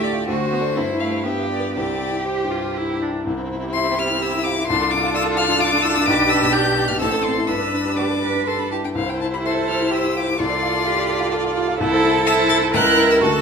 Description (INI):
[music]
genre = quick classical-period movement for piano quintet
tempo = 116-131 BPM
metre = 3/4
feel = rubato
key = C major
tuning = A4 = 440 Hz
[part]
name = rich violin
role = melody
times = 0.0-13.4 s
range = C5 to A6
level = -22 LUFS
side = left 5 dB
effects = none
[part]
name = rich cello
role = second line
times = 0.0-13.4 s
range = E4 to B4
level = -24 LUFS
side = right 7 dB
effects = none
[part]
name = rich violin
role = second line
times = 0.0-13.4 s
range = E4 to D5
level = -26 LUFS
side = left 2 dB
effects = none
[part]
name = dark baby grand piano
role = accompaniment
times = 0.0-13.4 s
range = A1 to F5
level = -23 LUFS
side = left 1 dB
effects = none
[part]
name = rich viola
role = accompaniment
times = 0.0-13.4 s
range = A3 to G4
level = -25 LUFS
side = right 2 dB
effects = none
[sound]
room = wet recital hall reverb, RT60 1.6 s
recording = minimal, uncompressed stereo recording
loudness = -17 LUFS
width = side -6 dB against mid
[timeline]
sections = 0.0-3.3 A section; 3.3-13.4 B section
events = none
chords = 0.3 D7; 0.8 C/G; 1.2 G7; 1.8 C; 4.7 Dm7/C; 6.1 G/B; 7.0 Am; 7.5 G; 9.0 C; 10.4 Dm7/C; 11.8 Am/C; 12.7 C#dim7